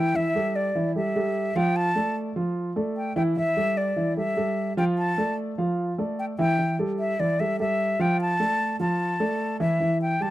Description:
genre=latin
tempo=149 BPM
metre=4/4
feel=straight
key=unclear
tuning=A4 = 441 Hz
part: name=breathy concert flute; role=melody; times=0.0-10.3 s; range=D5 to A5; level=-26 LUFS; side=left 1 dB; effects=none
part: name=dark grand piano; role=arpeggios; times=0.0-10.3 s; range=E3 to G5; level=-25 LUFS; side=right 1 dB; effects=none
room=studio reverb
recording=dry, close 1970s-style studio recording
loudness=-23 LUFS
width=side -15 dB against mid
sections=0.0-9.8 A section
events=none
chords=0.1 A5; 1.8 Dm; 3.4 A5; 5.0 Dm; 6.6 A5; 8.2 Dm; 9.8 N.C.

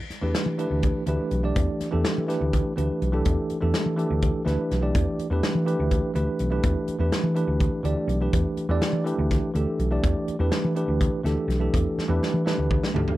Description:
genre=electric jazz fusion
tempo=248 BPM (eighths)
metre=7/8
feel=straight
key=E minor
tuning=A4 = 440 Hz
part: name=hollow-body short-scale fingered electric bass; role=bass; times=0.1-13.1 s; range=B1 to E3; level=-25 LUFS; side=equal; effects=none
part: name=modern studio drum kit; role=drums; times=0.1-13.2 s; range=hi-hat, kick drum, snare drum, toms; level=-27 LUFS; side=equal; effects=none
part: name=bell-like tine electric piano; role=accompaniment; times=0.2-13.2 s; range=E3 to D5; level=-26 LUFS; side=right 1 dB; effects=medium stereo tremolo
room=little or no reverb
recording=none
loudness=-22 LUFS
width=side -16 dB against mid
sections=0.0-13.2 A section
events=drum fill 12.0-13.2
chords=0.0 Em7

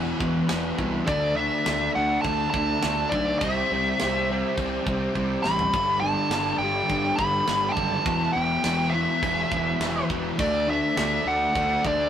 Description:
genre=hard rock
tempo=103 BPM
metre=4/4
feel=straight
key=unclear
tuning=A4 = 442 Hz
part: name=overdriven tonewheel organ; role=sustained chords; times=0.0-12.1 s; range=G3 to G5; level=-37 LUFS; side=equal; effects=slow rotary speaker, chorus vibrato
part: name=overdriven electric guitar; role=riff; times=0.0-12.1 s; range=E2 to D4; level=-27 LUFS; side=left 1 dB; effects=none
part: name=fuzz fingered electric bass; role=bass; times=0.0-12.1 s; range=E1 to D2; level=-31 LUFS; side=right 1 dB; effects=overdrive
part: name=tight metal drum kit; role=drums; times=0.2-12.0 s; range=crash cymbal, kick drum, snare drum, toms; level=-32 LUFS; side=equal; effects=none
part: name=dark smooth lead guitar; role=melody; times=1.1-12.1 s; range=D5 to B5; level=-24 LUFS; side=equal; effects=overdrive
room=moderate studio reverb, RT60 0.5 s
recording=rough rehearsal-room recording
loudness=-22 LUFS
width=side -9 dB against mid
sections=0.0-12.1 A section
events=drum fill 5.2-5.7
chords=0.0 E5; 1.1 D5; 3.4 C; 5.7 G5; 8.1 Em; 10.4 D

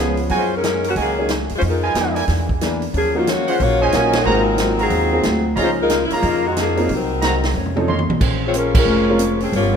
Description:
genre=jazz, big band swing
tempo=182 BPM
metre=4/4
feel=swing 64% on 8ths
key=Db major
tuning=A4 = 440 Hz
part: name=clear saxophone section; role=melody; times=0.0-9.7 s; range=Eb3 to Db5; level=-20 LUFS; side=left 2 dB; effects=none
part: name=bright upright piano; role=accompaniment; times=0.0-9.8 s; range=E3 to A#4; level=-25 LUFS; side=right 1 dB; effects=none
part: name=vintage hollow-body jazz guitar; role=accompaniment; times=0.0-9.8 s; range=F2 to C5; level=-26 LUFS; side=left 3 dB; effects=none
part: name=upright bass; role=bass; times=0.0-9.8 s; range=F1 to Gb2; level=-22 LUFS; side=right 1 dB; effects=none
part: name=swinging big-band drum kit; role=drums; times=0.2-9.6 s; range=crash cymbal, hi-hat, kick drum, ride cymbal, snare drum, toms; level=-22 LUFS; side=right 1 dB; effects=none
part: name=warm trumpet section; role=stabs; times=0.3-8.0 s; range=Fb4 to C6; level=-24 LUFS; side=right 3 dB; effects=none
room=light reverb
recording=minimal, uncompressed stereo recording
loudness=-15 LUFS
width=side -7 dB against mid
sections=0.0-8.2 A section; 8.2-9.8 B section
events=band accent 4.1, 8.7; drum fill 7.6-8.2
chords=0.3 Gb69; 1.6 Fm7b5; 2.3 E7#11; 2.9 Ebm9; 4.3 Ab13; 5.6 Db69; 6.9 Cm7b5; 7.6 F7b13; 8.2 Bbm9

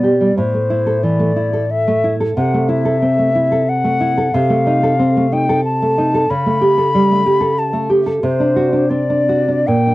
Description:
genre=romantic duo for flute and classical guitar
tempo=92 BPM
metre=3/4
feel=rubato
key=unclear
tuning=A4 = 440 Hz
part: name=mellow hollow silver concert flute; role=melody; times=0.0-9.9 s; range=C5 to B5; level=-17 LUFS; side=left 2 dB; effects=cassette tape
part: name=nylon-string guitar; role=accompaniment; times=0.0-9.9 s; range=A2 to A4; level=-15 LUFS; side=right 1 dB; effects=none
room=moderate booth ambience, RT60 0.2 s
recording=home recording on cassette, nothing above 10.9 kHz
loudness=-13 LUFS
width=side -17 dB against mid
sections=0.0-9.9 A section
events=none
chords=0.4 Am; 2.4 Am/C; 4.3 Adim/C; 6.3 A7/C#; 8.2 D7/C

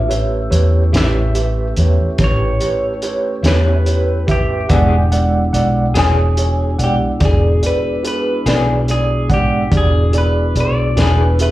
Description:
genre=slow blues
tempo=48 BPM (dotted quarters)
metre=12/8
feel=straight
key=E mixolydian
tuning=A4 = 440 Hz
part: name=electric guitar through a small old amp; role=melody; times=0.0-11.5 s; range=G4 to E5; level=-22 LUFS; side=left 1 dB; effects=phaser, plate reverb, slapback echo
part: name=mellow tonewheel organ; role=sustained chords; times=0.0-11.5 s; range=G#3 to G4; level=-25 LUFS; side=equal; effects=slow rotary speaker
part: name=vintage muted fingered electric bass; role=bass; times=0.0-11.5 s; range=E1 to E2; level=-15 LUFS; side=equal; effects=none
part: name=overdriven tine electric piano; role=accompaniment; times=0.1-11.5 s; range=G#3 to F#5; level=-20 LUFS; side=right 3 dB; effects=medium tremolo, plate reverb, slapback echo
part: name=crunchy breakbeat drum kit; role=drums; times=0.1-11.5 s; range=hi-hat, kick drum, snare drum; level=-19 LUFS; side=equal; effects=none
part: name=electric guitar through a small old amp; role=accompaniment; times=0.9-11.2 s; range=A2 to G#4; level=-22 LUFS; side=left 5 dB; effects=tremolo, plate reverb, slapback echo
room=light reverb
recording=live gig heard through the venue's PA, club reverb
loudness=-13 LUFS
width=side -16 dB against mid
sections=0.0-11.5 A section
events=none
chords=0.0 A7; 4.7 E7

